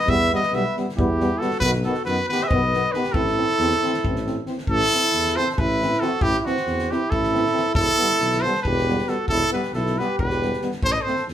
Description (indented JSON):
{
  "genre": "balkan folk, Balkan brass band",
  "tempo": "273 BPM (eighths)",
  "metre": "7/8",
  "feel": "straight",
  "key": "A dorian sharp4",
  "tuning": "A4 = 440 Hz",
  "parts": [
    { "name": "bright trumpet", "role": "melody", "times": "0.0-11.2 s", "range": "F#4 to E5", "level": "-22 LUFS", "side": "equal", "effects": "none" },
    { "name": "mellow flugelhorn", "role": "second line", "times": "0.0-11.2 s", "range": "C4 to C5", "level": "-27 LUFS", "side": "right 1 dB", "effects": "none" },
    { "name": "warm euphonium", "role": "accompaniment", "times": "0.1-11.2 s", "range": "D#3 to A3", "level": "-32 LUFS", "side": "right 4 dB", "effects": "none" },
    { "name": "warm trombone", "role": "accompaniment", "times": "0.1-11.1 s", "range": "B3 to C4", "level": "-29 LUFS", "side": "left 3 dB", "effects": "none" },
    { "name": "mellow tuba", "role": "bass", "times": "0.1-11.3 s", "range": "E1 to F#2", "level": "-27 LUFS", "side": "equal", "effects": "none" },
    { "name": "loose indie drum kit", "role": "percussion", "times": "0.1-11.3 s", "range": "kick drum, snare drum", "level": "-29 LUFS", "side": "equal", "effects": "none" }
  ],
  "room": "wet studio reverb, RT60 0.6 s",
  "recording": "band playing live in one room",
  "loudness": "-19 LUFS",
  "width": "side -10 dB against mid",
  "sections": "0.0-4.7 A section; 4.7-11.3 B section",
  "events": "none",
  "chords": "0.0 Em; 1.6 B; 3.1 Am; 7.7 Em; 10.8 Am",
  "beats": "| 0.06 0.28 0.50 0.72 0.94 1.16 1.38 | 1.60 1.82 2.04 2.26 2.48 2.70 2.92 | 3.14 3.36 3.58 3.80 4.02 4.24 4.46 | 4.68 4.89 5.11 5.33 5.55 5.77 5.99 | 6.21 6.43 6.65 6.87 7.09 7.31 7.53 | 7.75 7.96 8.18 8.40 8.62 8.84 9.06 | 9.28 9.50 9.72 9.94 10.16 10.38 10.60 | 10.82 11.04 11.27"
}